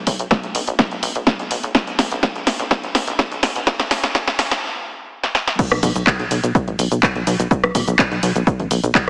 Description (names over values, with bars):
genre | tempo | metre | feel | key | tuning
progressive house | 125 BPM | 4/4 | straight | unclear | A4 = 440 Hz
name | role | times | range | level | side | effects
plucky analog bass | bass | 0.0-9.1 s | A1 to B1 | -21 LUFS | equal | sidechain pumping, high-pass filter
electronic kick drum | drums | 0.1-9.1 s | none | -20 LUFS | equal | none
house drum kit | drums | 0.1-9.1 s | crash cymbal, handclaps, hi-hat, rim click, shaker, snare drum | -18 LUFS | equal | none
room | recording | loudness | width
moderate lush hall reverb, RT60 1.7 s | heavily compressed radio sound, multiband compression, high-pass filter, small speaker sound | -16 LUFS | side -30 dB against mid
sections
0.0-5.6 A section; 5.6-9.1 B section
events
build-up 0.0-5.6; drum fill 0.0-4.6, 5.2-5.6; filter sweep 0.0-5.6; stop 4.6-5.6; drop 5.6-9.1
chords
none